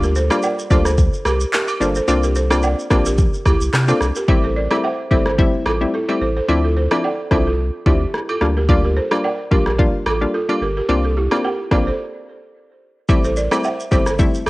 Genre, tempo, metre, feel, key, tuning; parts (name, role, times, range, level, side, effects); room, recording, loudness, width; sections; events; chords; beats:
afrobeats; 109 BPM; 4/4; swing 55% on 16ths; A4 = 439 Hz
hollow square pluck; accompaniment; 0.0-14.5 s; F3 to F4; -21 LUFS; left 2 dB; chorus, cassette tape
balafon; riff; 0.0-14.5 s; E4 to E5; -23 LUFS; right 2 dB; cassette tape, analog delay
warm sub bass; bass; 0.0-14.5 s; G1 to C3; -20 LUFS; equal
deep house drum kit; drums; 0.0-14.5 s; handclaps, kick drum, rim click, shaker; -18 LUFS; equal; cassette tape
agogo bells and woodblock; percussion; 0.3-14.5 s; -27 LUFS; right 4 dB
light reverb, digital ambience; home recording on cassette; -15 LUFS; side -20 dB against mid
0.0-4.3 A section; 4.3-14.5 B section
hi-hats muted 4.3-13.1; break 12.0-13.1
0.0 Gm7/D; 2.1 C9sus4; 4.3 Am7; 6.5 Dm9; 8.4 Gm7; 10.9 C9sus4; 13.1 Am7
0.43 0.98 1.53 | 2.08 2.63 3.18 3.73 | 4.28 4.83 5.38 5.93 | 6.49 7.04 7.59 8.14 | 8.69 9.24 9.79 10.34 | 10.89 11.44 11.99 12.54 | 13.09 13.64 14.19